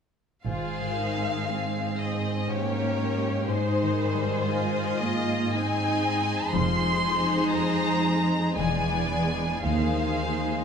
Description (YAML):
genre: classical, slow romantic movement for symphony orchestra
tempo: 59 BPM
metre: 3/4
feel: uneven beats, rubato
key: Ab major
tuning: A4 = 439 Hz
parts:
  - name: rich chamber violin section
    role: melody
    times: 0.5-10.6 s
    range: C5 to C6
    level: -29 LUFS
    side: left 2 dB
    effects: none
  - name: clear studio violin section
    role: second line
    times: 0.5-10.6 s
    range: G4 to Eb5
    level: -33 LUFS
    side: left 2 dB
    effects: none
  - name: clear studio viola section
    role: accompaniment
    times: 0.5-10.6 s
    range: G3 to F4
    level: -30 LUFS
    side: right 1 dB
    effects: none
  - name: concert harp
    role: arpeggios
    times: 0.5-10.6 s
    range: Ab2 to Eb5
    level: -31 LUFS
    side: left 8 dB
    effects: none
  - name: rich studio double bass section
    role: bass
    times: 0.5-1.4, 6.5-10.6 s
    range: E1 to Eb2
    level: -32 LUFS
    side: right 4 dB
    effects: none
  - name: warm studio cello section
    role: bass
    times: 0.5-10.6 s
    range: Eb2 to Ab2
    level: -30 LUFS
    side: right 4 dB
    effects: none
room: wet recital hall reverb, RT60 1.4 s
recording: none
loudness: -24 LUFS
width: side -6 dB against mid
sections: 0.5-10.6 A section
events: none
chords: 0.5 Ab; 2.5 Eb7/Ab; 3.5 Ab; 6.5 Fm7; 8.6 E7; 9.7 Ab/Eb